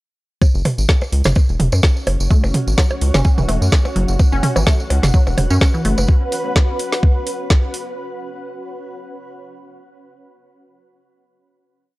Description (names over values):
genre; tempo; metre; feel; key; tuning
minimal techno; 127 BPM; 4/4; swing 55% on 16ths; unclear; A4 = 440 Hz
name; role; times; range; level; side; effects
electronic kick drum; drums; 0.4-7.6 s; none; -14 LUFS; equal; overdrive
electronic percussion blips and toms; percussion; 0.4-6.1 s; none; -21 LUFS; right 1 dB; none
tambourine; percussion; 0.4-6.1 s; none; -31 LUFS; right 2 dB; none
granular cloud pad; texture; 2.0-8.0 s; C#4 to F#5; -27 LUFS; equal; built-in reverb, sidechain pumping
rubbery square bass; bass; 0.5-6.1 s; E1 to F#2; -17 LUFS; equal; tube saturation, sidechain pumping
garage drum kit; drums; 0.7-7.8 s; hi-hat, snare drum; -22 LUFS; equal; overdrive
resonant blip pluck; riff; 2.3-5.9 s; E3 to C#4; -24 LUFS; equal; phaser, sidechain pumping, tape echo
room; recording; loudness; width
digital ambience; dry, gritty hardware recording, cassette tape; -14 LUFS; side -20 dB against mid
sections
0.4-8.0 groove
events
fade-in on ambient pad 0.4-8.0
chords
0.4 F#5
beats
| 0.42 0.89 1.36 1.83 | 2.31 2.78 3.25 3.72 | 4.20 4.67 5.14 5.61 | 6.08 6.56 7.03 7.50